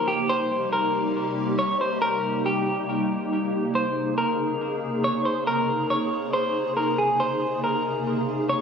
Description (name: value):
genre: hip hop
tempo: 139 BPM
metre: 4/4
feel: half-time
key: Bb dorian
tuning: A4 = 439 Hz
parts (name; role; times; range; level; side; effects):
- semi-hollow electric guitar; melody; 0.0-8.6 s; G4 to Db5; -24 LUFS; left 1 dB; ping-pong delay
- hollow soft pad; sustained chords; 0.0-8.6 s; C3 to Ab4; -26 LUFS; right 1 dB; ensemble chorus
room: light reverb, digital ambience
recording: recorded on a phone in the room, studio reverb, compression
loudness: -22 LUFS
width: side -6 dB against mid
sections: 0.0-8.6 A section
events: none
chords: 0.3 Cm7; 3.7 Bbm11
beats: | 0.29 0.73 1.16 1.59 | 2.02 2.45 2.88 3.32 | 3.75 4.18 4.61 5.04 | 5.47 5.91 6.34 6.77 | 7.20 7.63 8.06 8.50